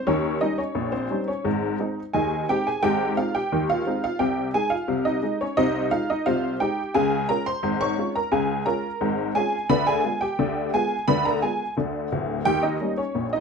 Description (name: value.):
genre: ragtime piano.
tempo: 87 BPM.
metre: 2/4.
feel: straight.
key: Ab major.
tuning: A4 = 440 Hz.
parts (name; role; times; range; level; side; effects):
honky-tonk upright piano; solo; 0.0-13.4 s; D1 to Db6; -22 LUFS; equal; none.
room: light reverb.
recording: none.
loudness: -22 LUFS.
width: side -5 dB against mid.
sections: 0.0-13.4 A section.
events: none.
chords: 0.0 Eb7; 1.5 Ab; 4.2 Ab/C; 6.9 Db; 9.7 Ddim7; 12.5 Eb7.